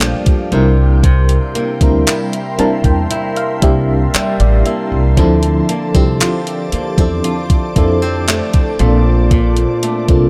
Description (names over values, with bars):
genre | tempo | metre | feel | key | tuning
contemporary R&B | 58 BPM | 4/4 | straight | unclear | A4 = 440 Hz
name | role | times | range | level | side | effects
FM electric piano with tremolo | accompaniment | 0.0-10.3 s | F3 to A5 | -19 LUFS | equal | phaser
ethereal airy pad | sustained chords | 0.0-10.3 s | G4 to D6 | -28 LUFS | equal | ensemble chorus, built-in reverb, phaser
flamenco guitar | arpeggios | 0.0-10.3 s | G2 to F4 | -23 LUFS | equal | dub echo
upright bass | bass | 0.0-10.3 s | A1 to F2 | -17 LUFS | equal | none
crisp 8-bit digital drum machine | drums | 0.0-10.3 s | handclaps, hi-hat, kick drum | -16 LUFS | equal | none
room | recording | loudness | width
light reverb | echo-heavy mix | -14 LUFS | mono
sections
0.0-10.3 A section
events
FM electric piano fill 2.1-5.2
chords
0.0 Gm7; 0.5 C7; 5.2 Dm7; 8.8 Bbmaj7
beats
0.00 | 1.04 2.07 3.10 4.14 | 5.17 6.21 7.24 8.28 | 9.31